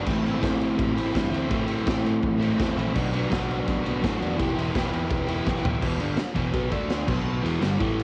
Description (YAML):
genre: garage rock duo or trio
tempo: 167 BPM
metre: 4/4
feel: straight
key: E minor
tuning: A4 = 440 Hz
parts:
  - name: crunchy overdriven guitar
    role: riff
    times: 0.0-8.0 s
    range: E2 to G4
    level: -27 LUFS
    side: equal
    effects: cassette tape
  - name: modern bright picked electric bass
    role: bass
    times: 0.1-8.0 s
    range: E1 to A2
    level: -34 LUFS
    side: equal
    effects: overdrive
  - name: raw garage drum kit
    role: drums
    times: 0.1-8.0 s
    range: crash cymbal, kick drum, ride cymbal, snare drum, toms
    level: -31 LUFS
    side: equal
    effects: cassette tape
room: light reverb, studio ambience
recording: home recording on cassette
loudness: -25 LUFS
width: mono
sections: 0.0-5.8 A section; 5.8-8.0 B section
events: drum fill 5.5-5.8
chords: 0.1 Am; 2.9 Bm; 4.4 Em; 6.7 D5; 7.1 B5; 7.4 Em